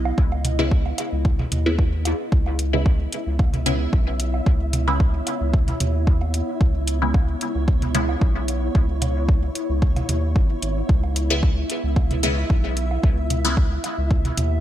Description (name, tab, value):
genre	dub techno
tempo	112 BPM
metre	4/4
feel	swing 54% on 16ths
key	C# minor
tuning	A4 = 439 Hz
part	warbly tape-like pad	sustained chords	0.0-14.6 s	B3 to E5	-30 LUFS	equal	chorus, built-in reverb, phaser, sidechain pumping
part	filtered dub chord stab	stabs	0.0-13.6 s	C#3 to E4	-26 LUFS	left 1 dB	phaser, dub echo
part	round analog bass	bass	0.0-14.6 s	G#1 to D#2	-23 LUFS	equal	tube saturation, sidechain pumping
part	electronic woodblock and toms	percussion	0.1-14.5 s	none	-31 LUFS	right 2 dB	sidechain pumping on perc, sidechain pumping on toms, dub echo
part	electronic kick drum	drums	0.2-14.2 s	none	-19 LUFS	equal	overdrive
part	electronic hi-hat	drums	0.4-14.5 s	none	-29 LUFS	left 1 dB	overdrive
part	flickering grainy texture	texture	3.0-14.6 s	E4 to E5	-34 LUFS	equal	built-in reverb, sidechain pumping
room	digital ambience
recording	none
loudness	-19 LUFS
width	side -12 dB against mid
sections	0.0-2.3 A section; 2.3-14.6 A section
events	none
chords	0.0 C#m7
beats	| 0.18 0.71 1.25 1.78 | 2.32 2.86 3.39 3.93 | 4.46 5.00 5.54 6.07 | 6.61 7.14 7.68 8.21 | 8.75 9.29 9.82 10.36 | 10.89 11.43 11.96 12.50 | 13.04 13.57 14.11